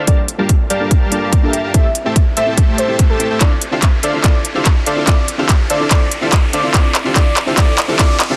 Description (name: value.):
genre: future bass.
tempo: 144 BPM.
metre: 4/4.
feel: half-time.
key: D minor.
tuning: A4 = 440 Hz.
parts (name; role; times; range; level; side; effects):
soft round pluck; accompaniment; 0.0-8.4 s; Bb3 to A4; -26 LUFS; equal; subtle chorus, sidechain pumping.
dense compressed supersaw; riff; 0.0-8.4 s; G3 to A5; -23 LUFS; equal; sidechain pumping, low-pass filter.
riser; sound effects; 0.3-8.4 s; none; -29 LUFS; equal; none.
warm velvety synth lead; melody; 0.1-8.2 s; A4 to E5; -24 LUFS; equal; chorus, sidechain pumping, dub echo.
electronic kick drum; drums; 0.1-8.1 s; none; -15 LUFS; equal; none.
trap drum kit; drums; 0.1-8.3 s; handclaps, hi-hat; -20 LUFS; equal; high-pass filter on hats, high-pass filter on snare.
room: light reverb.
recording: dense, heavily limited modern master.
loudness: -14 LUFS.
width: mono.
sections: 0.0-8.4 A section.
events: build-up 0.0-8.4; riser 0.3-8.4; drum fill 3.4-8.4.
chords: 0.1 Gm7; 1.7 Am7; 3.4 Dm9.